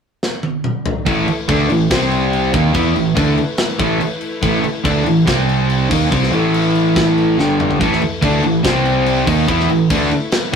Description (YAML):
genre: hard rock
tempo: 142 BPM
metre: 4/4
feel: straight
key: A minor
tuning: A4 = 439 Hz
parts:
  - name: tight metal drum kit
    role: drums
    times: 0.2-10.4 s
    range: crash cymbal, kick drum, snare drum, toms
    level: -20 LUFS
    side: left 1 dB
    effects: none
  - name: sweeping resonant pad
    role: sustained chords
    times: 1.1-10.6 s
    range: G3 to D5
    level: -29 LUFS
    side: left 2 dB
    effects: none
  - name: cranked stack guitar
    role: riff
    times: 1.1-10.6 s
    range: G2 to E4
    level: -18 LUFS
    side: left 4 dB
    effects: overdrive
  - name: sludgy distorted guitar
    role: riff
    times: 1.1-10.6 s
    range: G2 to E4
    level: -17 LUFS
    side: right 5 dB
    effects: overdrive
  - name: overdriven picked electric bass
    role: bass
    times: 1.1-10.2 s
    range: G1 to E2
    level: -22 LUFS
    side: left 1 dB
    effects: none
  - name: cranked stack guitar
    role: riff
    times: 7.8-10.6 s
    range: A2 to E4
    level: -22 LUFS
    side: equal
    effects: overdrive
room: light reverb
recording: rough rehearsal-room recording, warm saturation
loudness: -13 LUFS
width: side -6 dB against mid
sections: 0.0-1.1 A section; 1.1-10.6 B section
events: drum fill 0.2-1.1, 7.4-7.8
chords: 0.0 N.C.; 1.1 A5; 1.9 C5; 2.5 A5; 5.3 C5; 5.9 Am; 7.4 G5; 7.8 A5; 8.6 C5; 9.3 A5